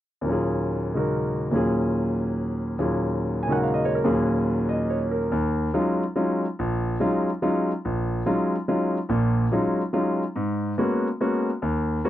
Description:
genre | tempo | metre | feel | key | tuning
jazz | 143 BPM | 3/4 | swing 65% on 8ths | Eb minor | A4 = 436 Hz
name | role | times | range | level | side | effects
clear concert grand piano | solo | 0.2-12.1 s | Bb1 to Ab5 | -22 LUFS | equal | none
room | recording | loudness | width
moderate booth ambience, RT60 0.2 s | dry, close 1970s-style studio recording | -22 LUFS | side -13 dB against mid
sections
0.3-5.3 A section; 5.3-12.1 B section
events
none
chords
0.3 Ebm11; 10.4 Abm11

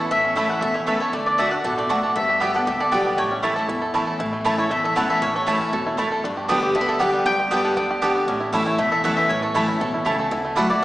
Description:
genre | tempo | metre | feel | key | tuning
bluegrass | 235 BPM | 4/4 | straight | A mixolydian | A4 = 440 Hz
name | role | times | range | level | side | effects
bluegrass banjo | melody | 0.0-10.8 s | E3 to A4 | -26 LUFS | right 1 dB | none
mandolin | melody | 0.0-10.8 s | B4 to G5 | -23 LUFS | left 1 dB | none
picked steel-string acoustic guitar | accompaniment | 0.0-10.8 s | E2 to G4 | -24 LUFS | left 1 dB | none
upright bass | bass | 0.1-10.8 s | E1 to D2 | -39 LUFS | equal | none
mandolin | stabs | 0.4-10.7 s | A3 to A5 | -25 LUFS | right 1 dB | none
room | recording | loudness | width
wet concert hall reverb, RT60 1.8 s | recorded in a church or concert hall, small speaker sound | -19 LUFS | side -16 dB against mid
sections
0.0-4.2 A section; 4.2-10.8 B section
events
none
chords
0.0 A; 1.1 D; 2.2 G; 3.2 A; 6.2 G; 8.3 A; 10.3 Dadd9

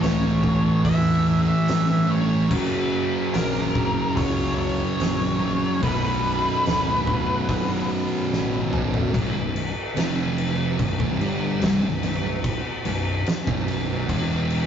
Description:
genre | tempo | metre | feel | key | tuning
stoner and doom metal | 72 BPM | 4/4 | straight | unclear | A4 = 440 Hz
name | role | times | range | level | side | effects
octave-fuzz lead guitar | melody | 0.0-8.7 s | A#4 to E5 | -27 LUFS | equal | distortion
high-gain distorted guitar | riff | 0.0-9.1 s | B1 to A3 | -26 LUFS | left 1 dB | distortion
thick fuzz guitar | riff | 0.0-14.7 s | B1 to A3 | -28 LUFS | left 5 dB | distortion
thick fuzz guitar | riff | 0.0-14.7 s | B1 to A3 | -25 LUFS | right 4 dB | distortion
growling picked electric bass | bass | 0.0-14.7 s | B0 to G2 | -33 LUFS | left 1 dB | overdrive
oversized low-tuned drum kit | drums | 0.0-14.7 s | crash cymbal, hi-hat, kick drum, snare drum, toms | -27 LUFS | equal | none
room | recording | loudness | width
wet studio reverb, RT60 0.6 s | rough rehearsal-room recording, tube saturation, nothing above 7.6 kHz | -20 LUFS | side -8 dB against mid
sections
0.0-9.1 A section; 9.1-14.7 B section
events
drum fill 8.3-9.1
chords
0.0 A; 2.5 F#; 5.8 Bm; 9.1 B5; 10.0 F5; 10.8 Bm; 14.1 E5

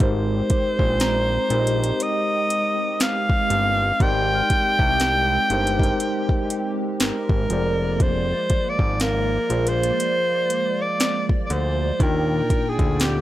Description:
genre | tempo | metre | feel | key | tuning
contemporary R&B | 60 BPM | 4/4 | swing 58% on 16ths | unclear | A4 = 440 Hz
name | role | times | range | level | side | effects
breathy alto saxophone | melody | 0.0-13.2 s | G4 to G5 | -22 LUFS | equal | none
mellow tine electric piano | accompaniment | 0.0-13.2 s | F3 to G5 | -27 LUFS | equal | medium stereo tremolo
hollow soft pad | sustained chords | 0.0-13.2 s | Bb2 to G5 | -31 LUFS | right 2 dB | ensemble chorus
fat analog bass | bass | 0.0-13.2 s | F1 to Eb2 | -24 LUFS | equal | none
smooth R&B drum kit | drums | 0.0-13.2 s | hi-hat, kick drum, snare drum | -22 LUFS | equal | none
large celesta | texture | 1.0-12.5 s | F5 to F6 | -38 LUFS | equal | none
room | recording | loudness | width
little or no reverb | dry, gritty hardware recording | -19 LUFS | side -14 dB against mid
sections
0.0-13.2 A section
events
none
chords
0.0 Abmaj7; 7.5 Bb9/F; 12.0 Ebmaj7

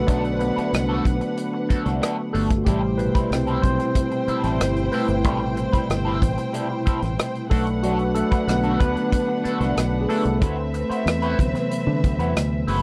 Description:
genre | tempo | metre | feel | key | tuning
lush 1970s-style soul | 93 BPM | 4/4 | straight | A dorian | A4 = 440 Hz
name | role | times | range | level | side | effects
warm studio string section | second line | 0.0-12.8 s | C4 to G5 | -30 LUFS | equal | tape echo
overdriven tine electric piano | accompaniment | 0.0-12.8 s | B2 to D5 | -26 LUFS | equal | none
fingered electric bass | bass | 0.0-12.8 s | F#1 to D3 | -28 LUFS | equal | none
electric guitar at the edge of break-up | riff | 0.1-12.8 s | G3 to C5 | -32 LUFS | equal | wah
warm soul drum kit | drums | 0.1-12.8 s | hi-hat, kick drum, rim click | -25 LUFS | equal | none
room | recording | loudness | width
little or no reverb | none | -22 LUFS | mono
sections
0.0-12.8 A section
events
tine electric piano solo 0.0-12.8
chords
0.0 Bm7; 2.7 Am7; 7.5 Bm7; 10.4 D13

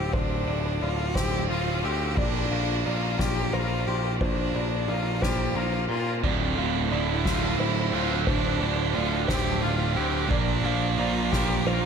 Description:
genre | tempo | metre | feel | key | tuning
post-rock | 59 BPM (dotted quarters) | 6/8 | straight | D minor | A4 = 441 Hz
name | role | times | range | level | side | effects
clear cello | melody | 0.0-11.9 s | C4 to G4 | -30 LUFS | left 2 dB | diffuse ambient delay
felt-muted upright piano | arpeggios | 0.0-11.9 s | C5 to F5 | -35 LUFS | right 2 dB | diffuse ambient delay
twangy electric guitar | arpeggios | 0.0-11.9 s | D2 to Bb4 | -35 LUFS | left 6 dB | ensemble chorus, diffuse ambient delay
modern bright picked electric bass | bass | 0.0-11.9 s | D1 to Bb2 | -29 LUFS | equal | none
soft-mallet drum kit | drums | 0.1-11.5 s | crash cymbal, kick drum, ride cymbal, snare drum | -30 LUFS | equal | none
cranked stack guitar | riff | 6.2-11.9 s | D2 to Bb3 | -27 LUFS | right 10 dB | overdrive, wide subtle chorus
room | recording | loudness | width
moderate huge ambient reverb, RT60 8.3 s | dreamy mix soaked in reverb | -23 LUFS | side -6 dB against mid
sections
0.0-11.9 A section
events
build-up 0.0-11.9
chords
0.0 Dm7; 2.2 Bb; 6.2 Dm7; 10.3 Bb

